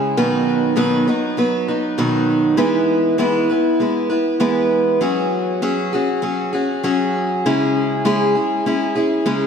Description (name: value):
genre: pop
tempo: 99 BPM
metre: 4/4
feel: straight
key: B major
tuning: A4 = 435 Hz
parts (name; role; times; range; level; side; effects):
- picked steel-string acoustic guitar; solo; 0.0-9.5 s; B2 to B4; -16 LUFS; equal; diffuse ambient delay
room: wet lush hall reverb, RT60 3.0 s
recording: dreamy mix soaked in reverb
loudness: -16 LUFS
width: side -6 dB against mid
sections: 0.0-9.5 A section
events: none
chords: 0.2 B; 2.6 E; 5.0 F#sus2; 7.4 C#m